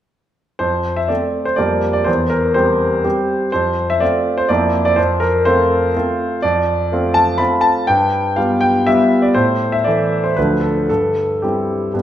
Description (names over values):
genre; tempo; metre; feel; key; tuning
classical-period piano sonatina; 123 BPM; 3/4; rubato; F major, C major from 6.4 s; A4 = 440 Hz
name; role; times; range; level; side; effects
bright concert grand piano; solo; 0.6-12.0 s; D2 to B5; -14 LUFS; equal; none
room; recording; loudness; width
wet recital hall reverb, RT60 1.6 s; none; -14 LUFS; side -11 dB against mid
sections
0.6-12.0 A section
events
none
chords
0.6 F; 1.6 Gm7/F; 2.1 C/E; 3.5 F; 4.5 C7/F; 5.0 F; 7.9 G7; 9.4 A5; 10.4 Dm; 10.9 C/G